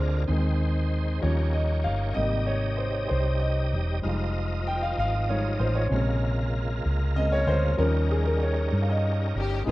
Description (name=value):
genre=slow gospel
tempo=64 BPM (dotted quarters)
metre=6/8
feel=straight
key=unclear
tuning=A4 = 440 Hz
part: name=warm upright piano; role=accompaniment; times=0.0-9.7 s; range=Ab2 to G5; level=-28 LUFS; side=left 1 dB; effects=none
part: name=bright tonewheel organ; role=sustained chords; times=0.0-9.7 s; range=F3 to Eb5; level=-33 LUFS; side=right 1 dB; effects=slow rotary speaker, overdrive, chorus vibrato
part: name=hollow-body short-scale fingered electric bass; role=bass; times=0.0-9.7 s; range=Fb1 to G2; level=-25 LUFS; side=equal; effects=none
part: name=warm studio string section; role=melody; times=9.4-9.7 s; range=F4 to G4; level=-31 LUFS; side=left 5 dB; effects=none
room=light reverb, studio reverb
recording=rough home demo mix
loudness=-23 LUFS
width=side -18 dB against mid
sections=0.0-9.7 A section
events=upright piano solo 0.0-9.7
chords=0.3 Ab/Eb; 1.2 Eb7; 2.2 Abmaj7; 4.0 Fm7; 5.9 Bbm7; 7.8 Eb7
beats=| 0.28 1.22 | 2.16 3.10 | 4.04 4.98 | 5.92 6.85 | 7.79 8.73 | 9.67